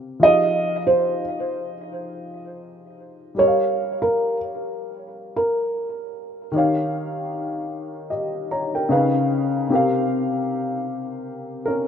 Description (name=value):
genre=hip hop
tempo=76 BPM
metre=4/4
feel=swing 60% on 16ths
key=F minor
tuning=A4 = 439 Hz
part: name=dark upright piano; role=accompaniment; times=0.0-11.9 s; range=C3 to Bb5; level=-23 LUFS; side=left 2 dB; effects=cassette tape, low-pass filter
part: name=felt-muted upright piano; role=melody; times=0.2-6.5 s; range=Bb4 to Eb5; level=-20 LUFS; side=right 2 dB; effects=low-pass filter, tape echo
room=moderate lush hall reverb, RT60 2.8 s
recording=rough home demo mix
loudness=-20 LUFS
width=side -8 dB against mid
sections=0.0-11.9 A section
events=none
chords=0.2 Fm7; 3.4 Gm7b5; 6.5 Eb7; 8.9 Db9; 9.7 C7sus4